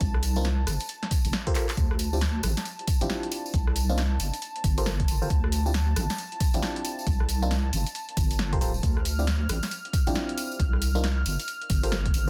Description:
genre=UK garage, two-step garage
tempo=136 BPM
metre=4/4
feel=swing 62% on 16ths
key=D minor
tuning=A4 = 441 Hz
part: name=warm analog pad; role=sustained chords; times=0.0-12.3 s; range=A5 to F6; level=-41 LUFS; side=equal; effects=chorus, sidechain pumping
part: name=deep soft wobble bass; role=bass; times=0.0-12.3 s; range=D1 to D2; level=-29 LUFS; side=equal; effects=chorus
part: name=electronic kick drum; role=drums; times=0.0-12.1 s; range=none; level=-29 LUFS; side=equal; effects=none
part: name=punchy analog drum machine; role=drums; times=0.0-12.2 s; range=handclaps, hi-hat, rim click, snare drum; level=-36 LUFS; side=equal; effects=none
part: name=tambourine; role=percussion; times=0.0-12.2 s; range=none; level=-40 LUFS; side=equal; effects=none
part: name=FM electric piano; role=stabs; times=0.4-12.3 s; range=Bb3 to C5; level=-36 LUFS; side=equal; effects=chorus, phaser, tape echo
room=little or no reverb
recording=dense, heavily limited modern master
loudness=-27 LUFS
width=mono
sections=0.0-12.3 A section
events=drum fill 1.6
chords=0.0 Cm11; 0.9 Gm11; 1.8 Dm11; 3.5 Cm11; 4.4 Gm11; 5.3 Dm11; 7.1 Cm11; 7.9 Gm11; 8.8 Dm11; 10.6 Cm11; 11.5 Gm11

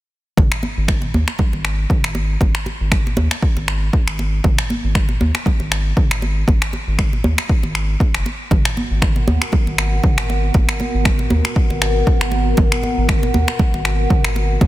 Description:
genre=afro house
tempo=118 BPM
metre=4/4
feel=swing 55% on 16ths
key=G# minor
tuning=A4 = 440 Hz
part: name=round analog bass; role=bass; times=0.4-14.7 s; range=F#1 to D#2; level=-19 LUFS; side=equal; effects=sidechain pumping
part: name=deep house drum kit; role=drums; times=0.4-14.7 s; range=finger snaps, toms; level=-23 LUFS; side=equal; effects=overdrive, soft clipping on snare
part: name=electronic kick drum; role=drums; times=0.4-14.7 s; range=none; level=-17 LUFS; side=equal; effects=overdrive
part: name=congas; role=percussion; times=0.4-14.7 s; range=none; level=-24 LUFS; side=right 2 dB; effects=none
part: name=dark analog pad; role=sustained chords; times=9.2-14.7 s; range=B3 to F#5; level=-23 LUFS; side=equal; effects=chorus, phaser, vintage 12-bit sampler grit, sidechain pumping
room=digital ambience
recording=dense, heavily limited modern master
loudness=-15 LUFS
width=side -16 dB against mid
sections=0.4-14.7 A section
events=none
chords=0.4 G#m9

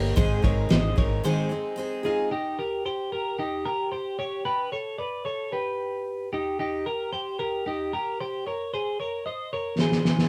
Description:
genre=jangly indie pop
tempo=112 BPM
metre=4/4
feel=straight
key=Eb mixolydian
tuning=A4 = 439 Hz
part: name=picked steel-string acoustic guitar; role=accompaniment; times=0.0-2.3 s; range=Ab2 to Ab4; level=-31 LUFS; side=equal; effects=none
part: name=twelve-string electric guitar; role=arpeggios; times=0.0-10.3 s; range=Eb4 to Eb5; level=-30 LUFS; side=equal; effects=none
part: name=vintage muted fingered electric bass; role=bass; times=0.0-1.2 s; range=G1 to Ab1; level=-29 LUFS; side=equal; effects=none
part: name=cloth-damped thuddy drum kit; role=drums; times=0.2-1.1, 9.8-10.3 s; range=hi-hat, kick drum, ride cymbal, snare drum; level=-25 LUFS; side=equal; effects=none
room=light reverb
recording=band playing live in one room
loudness=-28 LUFS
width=mono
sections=0.0-2.3 A section; 2.3-10.3 A section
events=break 1.2-2.3; drum fill 9.8-10.3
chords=0.2 Ab; 2.3 Eb; 4.2 G; 6.3 Eb; 8.7 Ab

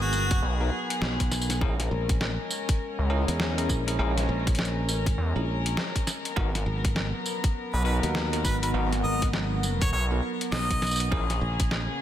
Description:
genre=glitch hop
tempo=101 BPM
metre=4/4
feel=swing 61% on 16ths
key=G# minor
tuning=A4 = 436 Hz
part: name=clear harmonica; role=melody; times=0.0-0.4, 7.7-11.1 s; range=F#4 to D#5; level=-32 LUFS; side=equal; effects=ping-pong delay
part: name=dark studio string section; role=sustained chords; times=0.0-12.0 s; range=C#3 to A#4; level=-34 LUFS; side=left 2 dB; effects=sidechain pumping
part: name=modern bright fingered electric bass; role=bass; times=0.0-11.9 s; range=G#1 to E2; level=-29 LUFS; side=equal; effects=none
part: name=deep dark ambient pad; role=texture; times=0.0-12.0 s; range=B3 to G#5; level=-37 LUFS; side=right 1 dB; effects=chorus, built-in reverb, sidechain pumping
part: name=boom bap sampler-style drum kit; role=drums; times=0.1-11.9 s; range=hi-hat, snare drum, tambourine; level=-32 LUFS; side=equal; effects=studio ambience
part: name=electronic kick drum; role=drums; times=0.3-11.7 s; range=none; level=-26 LUFS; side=equal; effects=studio ambience
part: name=gritty driven synth bass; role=bass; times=0.4-11.4 s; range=G#1 to E2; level=-26 LUFS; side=equal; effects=none
part: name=bell-like tine electric piano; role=stabs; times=0.6-11.2 s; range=B3 to A#4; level=-35 LUFS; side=equal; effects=medium stereo tremolo, sidechain pumping, ping-pong delay
room=moderate lush hall reverb, RT60 1.8 s, digital ambience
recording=dreamy mix soaked in reverb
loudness=-24 LUFS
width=side -11 dB against mid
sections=0.0-12.0 A section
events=none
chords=0.0 G#m9; 1.6 A#m7b5; 6.4 G#m9; 11.1 A#m7b5

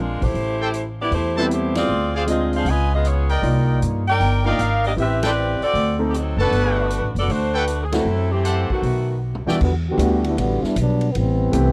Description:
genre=jazz, big band swing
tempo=156 BPM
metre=4/4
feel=swing 65% on 8ths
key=G major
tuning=A4 = 440 Hz
part: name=bright saxophone section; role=melody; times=0.0-9.2 s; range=Eb3 to G#5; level=-25 LUFS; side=equal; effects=tape echo
part: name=upright bass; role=bass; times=0.0-11.7 s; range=F#1 to G2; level=-24 LUFS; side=equal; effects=none
part: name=swinging big-band drum kit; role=drums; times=0.2-11.6 s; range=crash cymbal, hi-hat, kick drum, ride cymbal, snare drum, toms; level=-33 LUFS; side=equal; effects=none
part: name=brilliant trumpet section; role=stabs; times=0.6-9.6 s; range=G4 to A5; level=-26 LUFS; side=equal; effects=none
part: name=warm grand piano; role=accompaniment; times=1.4-11.7 s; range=E2 to D5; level=-26 LUFS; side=equal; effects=none
part: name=clear trombone section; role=second line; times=9.6-11.7 s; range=D3 to G4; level=-24 LUFS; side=equal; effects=none
room=little or no reverb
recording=dry, close 1970s-style studio recording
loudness=-20 LUFS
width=mono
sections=0.0-9.6 A section; 9.6-11.7 B section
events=band accent 1.7, 5.2, 7.9; drum fill 9.2-9.6; trombone section solo 9.6-11.7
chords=0.3 Am7; 1.9 Dm7b5; 2.7 C#9; 3.4 Cm11; 5.0 Am9; 5.7 D7b9; 6.5 Gmaj9; 8.1 F#m7b5; 8.8 B7; 9.6 Em9; 11.1 Am9

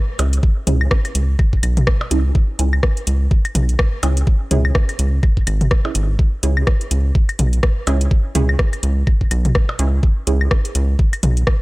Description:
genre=minimal techno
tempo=125 BPM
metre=4/4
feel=swing 58% on 16ths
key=C# minor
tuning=A4 = 435 Hz
part: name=filtered dub chord stab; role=stabs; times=0.2-10.3 s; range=C#4 to G#4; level=-26 LUFS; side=right 3 dB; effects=phaser, lush chorus, analog delay
part: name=rubbery square bass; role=bass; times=0.2-11.4 s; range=G#1 to C#2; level=-16 LUFS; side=equal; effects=tube saturation, sidechain pumping
part: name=garage drum kit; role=drums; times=0.2-11.6 s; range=hi-hat, rim click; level=-24 LUFS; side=equal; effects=none
part: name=electronic percussion blips, toms and claves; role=percussion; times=0.2-11.3 s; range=none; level=-24 LUFS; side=left 1 dB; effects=analog delay
part: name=electronic kick drum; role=drums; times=0.4-11.6 s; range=none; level=-16 LUFS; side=equal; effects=none
room=little or no reverb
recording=dry, gritty hardware recording, transformer saturation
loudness=-15 LUFS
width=side -22 dB against mid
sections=0.0-11.6 A section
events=none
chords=0.0 C#m

